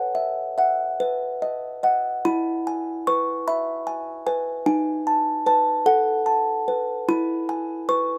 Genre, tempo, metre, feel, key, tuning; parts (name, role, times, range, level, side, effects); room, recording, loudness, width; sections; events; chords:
classical, lullaby for music box; 47-51 BPM (dotted quarters); 6/8; rubato; E major; A4 = 440 Hz
music box; solo; 0.0-8.2 s; D#4 to C#6; -23 LUFS; equal
little or no reverb; close, detailed microphones; -23 LUFS; mono
0.0-2.3 A section; 2.3-8.2 B section
0.0 Bsus4; 1.0 B; 2.3 E; 4.7 B7/D#; 7.1 E